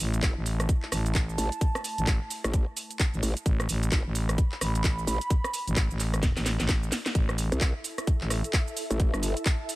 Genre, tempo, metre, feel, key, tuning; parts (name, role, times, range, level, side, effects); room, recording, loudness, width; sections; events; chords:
bass house; 130 BPM; 4/4; swing 60% on 16ths; A4 = 438 Hz
sweeping resonant pad; sustained chords; 0.0-7.1 s; A3 to B5; -37 LUFS; right 3 dB; chorus, sidechain pumping
growling FM bass; bass; 0.0-8.4 s; A1; -28 LUFS; equal; tube saturation, sidechain pumping
garage drum kit; drums; 0.0-9.8 s; handclaps, hi-hat, rim click, shaker, snare drum; -31 LUFS; right 1 dB
growl bass; bass; 0.2-9.3 s; G1 to C2; -28 LUFS; equal; chorus, tube saturation, sidechain pumping
electronic kick drum; drums; 0.2-9.6 s; -25 LUFS; equal
ethereal airy pad; texture; 7.4-9.8 s; E4 to A5; -37 LUFS; right 1 dB; ensemble chorus, built-in reverb, sidechain pumping
little or no reverb; -25 LUFS; side -18 dB against mid
0.0-7.2 A section; 7.2-9.8 A section
drop 0.0-7.2, 7.2-9.8; drum fill 6.2-7.2; band accent 7.0
0.0 A5